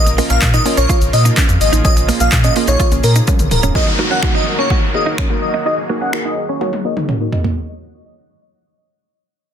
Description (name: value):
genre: dance-pop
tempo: 126 BPM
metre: 4/4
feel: straight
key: Eb minor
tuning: A4 = 440 Hz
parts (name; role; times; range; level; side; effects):
- airy dreamy lead; melody; 0.0-7.4 s; Bb4 to Gb5; -19 LUFS; equal; chorus, sidechain pumping, low-pass filter, ping-pong delay
- mallet-like synth pluck; accompaniment; 0.0-7.5 s; Bb3 to Eb5; -24 LUFS; equal; chorus, phaser, sidechain pumping, low-pass filter
- soft supersaw; sustained chords; 0.0-7.5 s; Db3 to Bb4; -25 LUFS; equal; sidechain pumping, low-pass filter
- sub bass with octave; bass; 0.0-3.7 s; Db1 to Bb2; -15 LUFS; equal; sidechain pumping
- direct-recorded clean electric guitar; riff; 0.1-7.5 s; Bb3 to Gb4; -23 LUFS; right 7 dB; analog chorus, low-pass filter
- punchy analog drum machine; drums; 0.1-7.6 s; finger snaps, handclaps, hi-hat, kick drum, shaker, toms; -16 LUFS; equal; overdrive
- downlifter; sound effects; 3.8-7.6 s; none; -24 LUFS; equal; none
room: light reverb, digital ambience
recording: dense, heavily limited modern master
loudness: -12 LUFS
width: side -9 dB against mid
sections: 0.0-3.8 A section; 3.8-7.6 B section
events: drop 0.0-3.8; drum fill 3.3-3.8, 6.6-7.6; filter sweep 3.8-7.6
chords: 0.0 Bbm; 3.8 Ebm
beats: 0.42 0.90 1.37 | 1.85 2.32 2.80 3.28 | 3.75 4.23 4.70 5.18 | 5.66 6.13 6.61 7.08